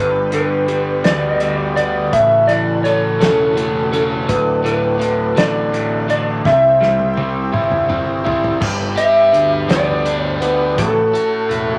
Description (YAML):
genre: psychedelic rock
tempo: 56 BPM (dotted quarters)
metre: 6/8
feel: straight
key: unclear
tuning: A4 = 445 Hz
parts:
  - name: electric slide guitar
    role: melody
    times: 0.0-11.8 s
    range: A4 to E5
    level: -18 LUFS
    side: equal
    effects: none
  - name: overdriven combo organ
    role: sustained chords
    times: 0.0-11.8 s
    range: C#3 to G4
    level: -27 LUFS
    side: equal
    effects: none
  - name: overdriven electric guitar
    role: riff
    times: 0.0-11.8 s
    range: D2 to A4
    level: -22 LUFS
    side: equal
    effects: phaser
  - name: fuzz fingered electric bass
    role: bass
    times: 0.0-11.8 s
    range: D1 to D2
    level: -27 LUFS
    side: equal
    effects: overdrive
  - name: damped 70s drum kit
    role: drums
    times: 0.3-11.7 s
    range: crash cymbal, hi-hat, kick drum, snare drum, toms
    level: -23 LUFS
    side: equal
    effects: none
  - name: congas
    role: percussion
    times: 8.6-11.3 s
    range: none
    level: -31 LUFS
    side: equal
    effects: none
room: wet large studio reverb, RT60 0.9 s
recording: vinyl crackle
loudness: -16 LUFS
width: mono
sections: 0.0-8.6 A section; 8.6-11.8 B section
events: drum fill 6.5-8.6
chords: 0.0 G; 2.1 A6; 4.3 D; 6.5 C; 8.6 G; 10.8 A6